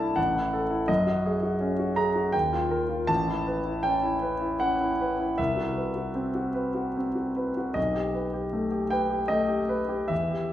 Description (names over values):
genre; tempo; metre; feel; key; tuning
classical, impressionist solo piano; 68-87 BPM; 3/4; rubato; unclear; A4 = 441 Hz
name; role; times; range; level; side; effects
clear grand piano; solo; 0.0-10.5 s; A1 to A#5; -24 LUFS; equal; none
room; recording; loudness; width
wet recital hall reverb, RT60 1.5 s; recorded in a church or concert hall; -24 LUFS; side -12 dB against mid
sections
0.0-10.5 A section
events
none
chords
0.2 A5; 0.9 F#sus2; 2.3 D#add9; 3.1 A9; 5.4 Cmaj7#11; 7.8 Baug7